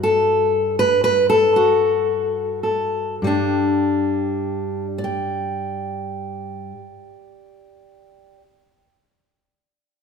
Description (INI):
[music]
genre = folk, solo fingerstyle acoustic guitar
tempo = 50-62 BPM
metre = 4/4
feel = rubato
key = G major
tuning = A4 = 439 Hz
[part]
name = fingerpicked steel-string acoustic guitar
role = solo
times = 0.0-8.4 s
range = G2 to G5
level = -18 LUFS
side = left 1 dB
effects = none
[sound]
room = moderate scoring stage reverb, RT60 1.8 s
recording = recorded in a church or concert hall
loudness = -17 LUFS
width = side -6 dB against mid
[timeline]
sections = 0.0-3.2 A section; 3.2-7.9 B section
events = slowing down 0.0-3.2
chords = 0.0 Gmaj9; 3.2 G5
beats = 0.04 1.03 2.08 | 3.22 4.40 5.56 6.72